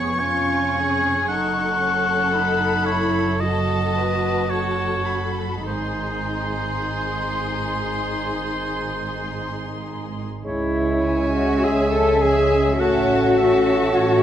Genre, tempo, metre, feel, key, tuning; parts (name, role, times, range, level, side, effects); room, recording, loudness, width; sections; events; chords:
classical, slow romantic movement for symphony orchestra; 49-58 BPM; 4/4; rubato; C# minor; A4 = 440 Hz
muted chamber violin section; melody; 0.0-14.2 s; G#5 to C#6; -30 LUFS; left 1 dB
clear oboe; second line; 0.0-14.2 s; B#4 to G#5; -25 LUFS; equal
muted chamber violin section; second line; 0.0-14.2 s; E#4 to E5; -30 LUFS; left 2 dB
muted chamber viola section; accompaniment; 0.0-14.2 s; B3 to F#4; -28 LUFS; equal
muted chamber cello section; bass; 0.0-14.2 s; E#2 to A4; -24 LUFS; left 1 dB
muted chamber double bass section; bass; 0.0-14.2 s; E#1 to C#2; -28 LUFS; right 3 dB
mellow hollow silver concert flute; second line; 10.4-14.2 s; C#5; -27 LUFS; left 1 dB
dark bassoon; accompaniment; 10.4-14.2 s; G#3 to A3; -26 LUFS; right 2 dB
warm French horn section; sustained chords; 10.4-14.2 s; G#3 to C#4; -27 LUFS; left 2 dB
moderate scoring stage reverb, RT60 1.7 s; -19 LUFS; side -10 dB against mid
0.0-10.4 A section; 10.4-14.2 B section
0.0 C#7/E#; 1.3 F#m7; 5.7 G#; 10.4 C#m; 12.8 A